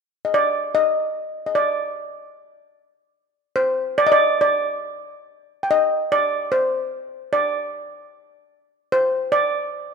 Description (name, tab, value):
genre	japanese traditional, Japanese chamber music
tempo	74 BPM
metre	2/4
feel	rubato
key	unclear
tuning	A4 = 438 Hz
part	steel pan	solo	0.2-9.9 s	C5 to G5	-18 LUFS	equal	none
room	moderate scoring stage reverb, RT60 1.8 s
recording	none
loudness	-18 LUFS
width	side -5 dB against mid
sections	0.0-5.7 A section; 5.7-9.9 B section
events	none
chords	none